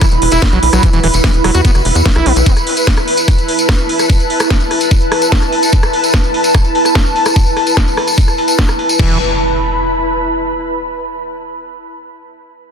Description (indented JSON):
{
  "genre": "psychedelic trance",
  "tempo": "147 BPM",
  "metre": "4/4",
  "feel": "straight",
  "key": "unclear",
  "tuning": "A4 = 439 Hz",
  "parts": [
    { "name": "overdriven acid bass", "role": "riff", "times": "0.0-2.3, 9.0-9.2 s", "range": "E3 to F#4", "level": "-19 LUFS", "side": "equal", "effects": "distortion, auto-pan, sidechain pumping, dub echo" },
    { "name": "drum and bass drum kit", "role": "drums", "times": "0.0-9.1 s", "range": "crash cymbal, hi-hat, rim click, snare drum", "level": "-19 LUFS", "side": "equal", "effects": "low-pass filter on hats, low-pass filter on snare, low-pass filter on cymbals, low-pass filter on room" },
    { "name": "electronic kick drum", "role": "drums", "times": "0.0-9.1 s", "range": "none", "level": "-12 LUFS", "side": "equal", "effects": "none" },
    { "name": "tambourine", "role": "percussion", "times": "0.0-9.0 s", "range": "none", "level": "-21 LUFS", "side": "left 3 dB", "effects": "none" },
    { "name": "ethereal airy pad", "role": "texture", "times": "0.0-10.6 s", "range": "E4 to B5", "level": "-15 LUFS", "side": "equal", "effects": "ensemble chorus, built-in reverb, sidechain pumping" },
    { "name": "tight sequencer bass", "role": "bass", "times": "0.1-2.4, 9.0-9.2 s", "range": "E1 to E2", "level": "-13 LUFS", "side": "equal", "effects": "none" },
    { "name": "impact", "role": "sound effects", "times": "9.0-10.6 s", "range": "none", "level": "-22 LUFS", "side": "equal", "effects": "none" }
  ],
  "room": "light reverb, digital ambience",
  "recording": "dense, heavily limited modern master",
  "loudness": "-10 LUFS",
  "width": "side -7 dB against mid",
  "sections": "0.0-9.0 A section; 9.0-10.6 B section",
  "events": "filter sweep on drum 0.0-9.0",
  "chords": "0.0 E5"
}